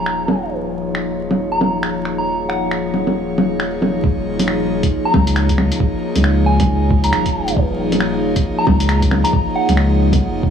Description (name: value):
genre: future garage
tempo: 136 BPM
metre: 4/4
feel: swing 61% on 16ths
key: unclear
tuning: A4 = 440 Hz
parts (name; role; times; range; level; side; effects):
- soft synth bell; melody; 0.0-10.2 s; Gb5 to Bb5; -22 LUFS; right 1 dB; chorus, tremolo, analog delay
- airy breathy pad; sustained chords; 0.0-10.5 s; F3 to Db5; -20 LUFS; left 1 dB; chorus, sidechain pumping
- warm sub bass; bass; 0.0-10.5 s; Eb1 to Db2; -20 LUFS; left 1 dB; tube saturation, sidechain pumping
- lo-fi sampler-style drum kit; drums; 0.1-10.2 s; bongos, finger snaps, hi-hat; -21 LUFS; right 1 dB; low-pass filter on hats, small room ambience, low-pass filter on perc, low-pass filter on snare
- electronic kick drum; drums; 4.0-10.5 s; none; -18 LUFS; equal; small room ambience
room: moderate lush hall reverb, RT60 2.1 s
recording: vinyl crackle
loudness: -15 LUFS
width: side -8 dB against mid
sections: 0.0-4.0 A section; 4.0-10.5 B section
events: filter sweep on drum 0.0-4.0; filter sweep on analog synth pad 0.0-4.0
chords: 0.0 Eb7(no3)